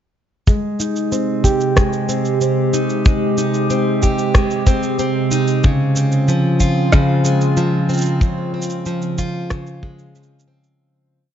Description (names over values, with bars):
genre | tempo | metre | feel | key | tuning
folktronica | 93 BPM | 4/4 | straight | Ab major | A4 = 440 Hz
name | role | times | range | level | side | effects
warbly tape-like pad | sustained chords | 1.1-10.8 s | C3 to G4 | -21 LUFS | right 3 dB | chorus, built-in reverb, phaser
picked plugged-in steel-string acoustic guitar | arpeggios | 0.5-11.3 s | Db3 to G4 | -18 LUFS | left 1 dB | low-pass filter, tape echo
electronic shaker and rim click | drums | 0.5-10.8 s | none | -25 LUFS | equal | none
kick drum | drums | 0.5-10.0 s | none | -15 LUFS | equal | none
room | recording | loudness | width
light reverb, studio ambience | nothing above 7.6 kHz | -15 LUFS | side -10 dB against mid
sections
0.5-10.8 groove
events
filter sweep on steel-string acoustic guitar 0.5-10.8; fade-out 7.4-10.8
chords
0.5 Abmaj7; 5.6 Dbmaj7